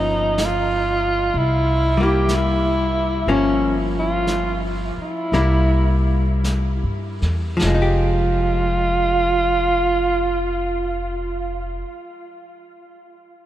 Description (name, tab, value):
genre	jazz ballad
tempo	50-64 BPM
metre	4/4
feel	swing 67% on 8ths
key	F minor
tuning	A4 = 440 Hz
part	breathy tenor saxophone	melody	0.0-11.9 s	Db4 to G4	-21 LUFS	right 2 dB	none
part	archtop guitar, miked and amplified	accompaniment	0.0-12.0 s	F3 to G4	-24 LUFS	left 2 dB	none
part	upright bass	bass	0.0-11.8 s	F1 to G2	-22 LUFS	equal	none
part	vintage brush drum kit	drums	0.4-8.2 s	brushed snare drum, hi-hat, snare drum	-32 LUFS	equal	none
room	moderate huge ambient reverb, RT60 8.1 s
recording	in a vast, echoing space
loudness	-17 LUFS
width	side -13 dB against mid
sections	0.0-7.6 A section; 7.6-12.4 B section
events	slowing down 0.0-7.6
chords	0.0 Gm7b5; 1.3 C7; 3.3 Gm7b5; 5.3 C7; 7.6 Fm9